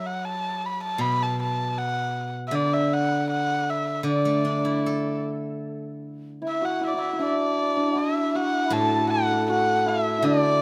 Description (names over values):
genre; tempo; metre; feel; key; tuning
chinese traditional, Chinese chamber ensemble; 78 BPM; 2/4; rubato; D gong mode; A4 = 437 Hz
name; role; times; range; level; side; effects
dark erhu; melody; 0.0-10.6 s; D5 to B5; -28 LUFS; equal; none
steel-string zither; accompaniment; 0.0-10.6 s; A2 to D5; -28 LUFS; equal; none
hammered dulcimer; second line; 6.4-10.6 s; D4 to A4; -28 LUFS; equal; none
mellow hollow large dizi; second line; 6.4-10.6 s; D5 to B5; -32 LUFS; equal; none
room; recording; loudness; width
light reverb; close, detailed microphones; -25 LUFS; mono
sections
0.0-5.6 A section; 5.6-10.6 B section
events
none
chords
none